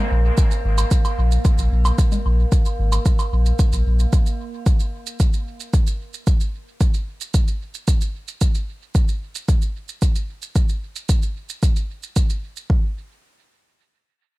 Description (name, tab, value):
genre	dub techno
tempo	112 BPM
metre	4/4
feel	straight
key	unclear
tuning	A4 = 442 Hz
part	metallic inharmonic drone	texture	0.0-4.1 s	Bb3	-32 LUFS	right 2 dB	chorus, built-in reverb, sidechain pumping
part	warm sub bass	bass	0.1-4.1 s	Ab1 to Bb1	-17 LUFS	equal	sidechain pumping
part	electronic kick drum	drums	0.4-12.8 s	none	-17 LUFS	equal	none
part	shaker	drums	0.4-12.7 s	none	-33 LUFS	right 7 dB	none
part	woodblock and congas	percussion	0.8-3.3 s	none	-29 LUFS	equal	overdrive, sidechain pumping on perc, dub echo
room	little or no reverb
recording	dark, warm production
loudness	-18 LUFS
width	side -20 dB against mid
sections	0.0-12.7 A section; 12.7-14.4 B section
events	none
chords	none